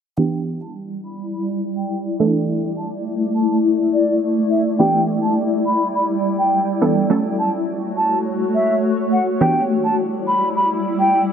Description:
pop; 104 BPM; 4/4; straight; E dorian; A4 = 440 Hz
mellow hollow concert flute; melody; 0.2-11.2 s; D5 to B5; -20 LUFS; equal; low-pass filter, digital delay
wide unison pluck; accompaniment; 0.2-11.3 s; E3 to A4; -20 LUFS; right 3 dB; low-pass filter
granular cloud pad; sustained chords; 0.8-11.3 s; G3 to D5; -19 LUFS; left 1 dB; built-in reverb, low-pass filter
light reverb, small room ambience; -16 LUFS; side -8 dB against mid
0.2-11.3 A section
filter sweep 0.2-11.3
0.2 Em7; 2.2 Asus4; 4.8 Em7; 7.1 F#m; 9.4 Em7
| 0.18 0.76 1.33 1.91 | 2.49 3.06 3.64 4.22 | 4.80 5.37 5.95 6.53 | 7.10 7.68 8.26 8.83 | 9.41 9.99 10.56 11.14

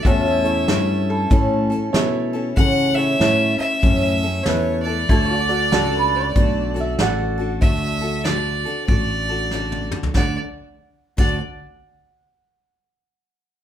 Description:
honky-tonk and classic country; 95 BPM; 4/4; swing 63% on 8ths; D major; A4 = 436 Hz
clear fiddle; melody; 0.0-11.4 s; C#5 to F#5; -23 LUFS; right 1 dB
picked steel-string acoustic guitar; accompaniment; 0.0-11.4 s; A2 to A4; -25 LUFS; left 2 dB
fingered electric bass; bass; 0.0-11.4 s; A1 to C#3; -24 LUFS; equal
pedal steel guitar; sustained chords; 0.1-7.6 s; E4 to E5; -30 LUFS; left 2 dB
soft brush drum kit; drums; 0.1-11.3 s; crash cymbal, hi-hat, kick drum, snare drum, toms; -19 LUFS; equal
clear concert grand piano; accompaniment; 0.4-7.5 s; E4 to D5; -25 LUFS; right 3 dB
lap resonator guitar; second line; 1.1-11.4 s; A4 to F#5; -25 LUFS; right 5 dB
moderate large studio reverb, RT60 0.9 s; band playing live in one room; -17 LUFS; side -10 dB against mid
0.0-7.6 A section; 7.6-10.2 B section; 10.2-12.7 C section
drum fill 9.5-10.2
0.0 A; 5.1 D
| 0.04 0.67 1.30 1.94 | 2.57 3.20 3.83 4.46 | 5.09 5.73 6.36 6.99 | 7.62 8.25 8.89 9.52 | 10.15 10.78

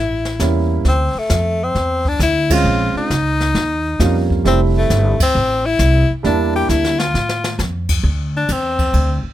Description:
jazz, small-group swing and bop; 134 BPM; 4/4; swing 67% on 8ths; A4 = 440 Hz
bright tenor saxophone; melody; 0.0-9.3 s; A3 to G4; -18 LUFS; left 3 dB
upright bass; bass; 0.0-9.3 s; F1 to A2; -18 LUFS; equal
jazz brush drum kit; drums; 0.3-9.1 s; brushed snare drum, crash cymbal, hi-hat, kick drum, ride cymbal, snare drum; -22 LUFS; equal
warm grand piano; accompaniment; 0.4-6.9 s; G3 to F4; -19 LUFS; right 5 dB
little or no reverb; close, detailed microphones; -14 LUFS; side -13 dB against mid
0.0-8.0 A section; 8.0-9.3 B section
band accent 2.4, 5.1; drum fill 6.7-7.6; tenor saxophone solo 8.0-9.3
0.0 A7b9; 0.8 Dm7; 2.6 Bbm7; 3.5 Eb9; 4.4 Fmaj9; 6.2 Em7b5; 7.1 F; 8.0 D5
0.40 | 0.85 1.30 1.75 2.20 | 2.65 3.10 3.55 4.00 | 4.45 4.90 5.35 5.80 | 6.25 6.70 7.14 7.59 | 8.04 8.49 8.94

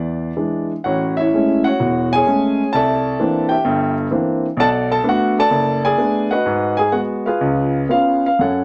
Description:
solo jazz; 128 BPM; 4/4; swing 68% on 8ths, rubato; A4 = 440 Hz
warm concert grand piano; solo; 0.0-8.6 s; E1 to A5; -18 LUFS; equal
moderate studio reverb, RT60 0.5 s; -18 LUFS; mono
0.0-8.4 A section
0.0 E7; 0.8 Amaj7; 2.7 C9; 4.6 Bm7; 6.5 G#m7; 7.4 C#7
0.36 | 0.84 1.32 1.80 2.27 | 2.74 3.20 3.66 4.12 | 4.59 5.05 5.52 5.99 | 6.46 6.93 7.41 7.90 | 8.40

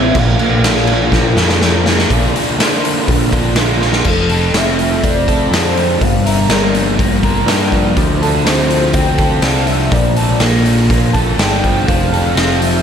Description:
rock, shoegaze and dream pop; 123 BPM; 4/4; straight; A4 = 440 Hz
warm velvety synth lead; melody; 0.0-12.8 s; A4 to A5; -21 LUFS; left 1 dB; chorus, diffuse ambient delay
crunchy overdriven guitar; riff; 0.0-12.8 s; G2 to Bb4; -15 LUFS; equal; lush chorus
growling picked electric bass; bass; 0.0-12.8 s; F1 to G2; -17 LUFS; equal; overdrive
raw garage drum kit; drums; 0.1-12.7 s; crash cymbal, hi-hat, kick drum, snare drum; -16 LUFS; equal
moderate lush hall reverb, RT60 1.8 s, small room reverb; dreamy mix soaked in reverb; -11 LUFS; side -8 dB against mid
0.0-2.1 A section; 2.1-4.0 B section; 4.0-12.8 C section
drum fill 1.1-2.1, 3.8
0.1 Bb; 4.0 F6; 6.0 Gm7; 8.0 Dm7; 9.9 Bbmaj7; 11.9 F6
| 0.14 0.63 1.12 1.61 | 2.10 2.58 3.07 3.56 | 4.05 4.54 5.03 5.52 | 6.00 6.50 6.98 7.47 | 7.96 8.45 8.94 9.43 | 9.92 10.41 10.90 11.38 | 11.87 12.36

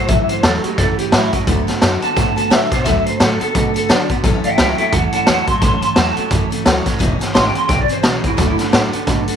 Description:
rockabilly; 174 BPM; 4/4; swing 59% on 8ths; A major; A4 = 440 Hz
electric guitar through a small old amp; melody; 0.0-9.4 s; D4 to C6; -19 LUFS; equal; tremolo, tape echo
picked steel-string acoustic guitar; accompaniment; 0.0-9.4 s; A2 to A4; -24 LUFS; left 13 dB
electric guitar through a small old amp; riff; 0.0-9.4 s; E2 to B3; -23 LUFS; right 15 dB; spring reverb
upright bass; bass; 0.0-9.3 s; E1 to D3; -22 LUFS; equal
raw garage drum kit; drums; 0.1-9.3 s; hi-hat, kick drum, snare drum; -16 LUFS; equal
small room reverb; 1960s-style stereo with parts hard left and right, faint mains hum; -13 LUFS; side -8 dB against mid
0.0-9.4 A section
0.0 A6; 1.5 D6; 4.2 A6; 7.0 E6; 8.4 D6
| 0.09 0.43 0.78 1.12 | 1.47 1.82 2.16 2.51 | 2.85 3.20 3.55 3.89 | 4.24 4.58 4.93 5.28 | 5.62 5.97 6.31 6.66 | 7.00 7.35 7.70 8.04 | 8.39 8.73 9.08

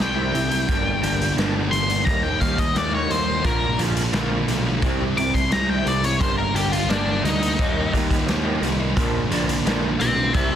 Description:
quiet-loud alternative rock; 87 BPM; 4/4; straight; A4 = 440 Hz
octave-fuzz lead guitar; melody; 0.0-10.6 s; D4 to D6; -23 LUFS; left 3 dB; distortion, slapback echo
thick fuzz guitar; riff; 0.0-10.6 s; G2 to F4; -25 LUFS; right 1 dB; distortion
overdriven picked electric bass; bass; 0.0-10.6 s; G1 to Eb2; -26 LUFS; equal
raw garage drum kit; drums; 0.0-10.5 s; hi-hat, kick drum, snare drum; -25 LUFS; equal
electric guitar through a small old amp; arpeggios; 0.2-10.6 s; C3 to F4; -29 LUFS; right 1 dB; ensemble chorus
light reverb, small room ambience; dense, heavily limited modern master; -19 LUFS; side -9 dB against mid
0.0-10.6 A section
lead electric guitar solo 0.0-10.6
0.0 C; 0.7 Gm; 2.1 Eb; 3.4 Bb; 4.8 C; 6.2 Gm; 7.6 Eb; 9.0 Bb
| 0.68 1.37 2.06 2.75 | 3.44 4.13 4.83 5.51 | 6.20 6.89 7.58 8.27 | 8.96 9.65 10.34

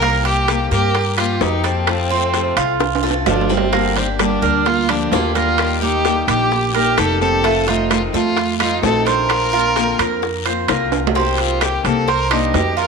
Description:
latin, Cuban son and guajira; 129 BPM; 4/4; straight; A4 = 442 Hz
rich violin; melody; 0.0-12.9 s; C4 to Bb4; -20 LUFS; left 1 dB
picked acoustic archtop guitar; accompaniment; 0.0-12.9 s; C3 to G4; -23 LUFS; left 12 dB
Cuban tres; arpeggios; 0.0-12.9 s; A3 to C5; -21 LUFS; right 9 dB
upright bass; bass; 0.0-12.9 s; F1 to G2; -23 LUFS; left 1 dB
bongos; percussion; 0.0-12.9 s; -26 LUFS; left 14 dB
guiro; percussion; 0.0-12.9 s; -30 LUFS; left 15 dB
timbales; percussion; 0.0-12.8 s; -23 LUFS; right 11 dB
claves; percussion; 0.5-12.5 s; -29 LUFS; left 14 dB
nylon-string guitar; second line; 3.3-10.4 s; Eb3 to Eb4; -23 LUFS; right 10 dB
moderate echo chamber reverb, RT60 1.6 s, small room ambience; 1960s-style stereo with parts hard left and right; -14 LUFS; side -5 dB against mid
0.0-11.2 A section; 11.2-12.9 B section
drum fill 2.8-3.7, 10.9; violin solo 11.2-12.9
0.0 Cm7; 1.9 F; 3.7 Gm; 5.6 Eb; 7.4 F7; 9.3 Bbadd9; 11.2 Cm7
| 0.02 0.48 0.95 1.41 | 1.87 2.34 2.80 3.27 | 3.73 4.19 4.66 5.12 | 5.58 6.05 6.51 6.98 | 7.44 7.90 8.37 8.83 | 9.30 9.76 10.22 10.69 | 11.15 11.62 12.08 12.54

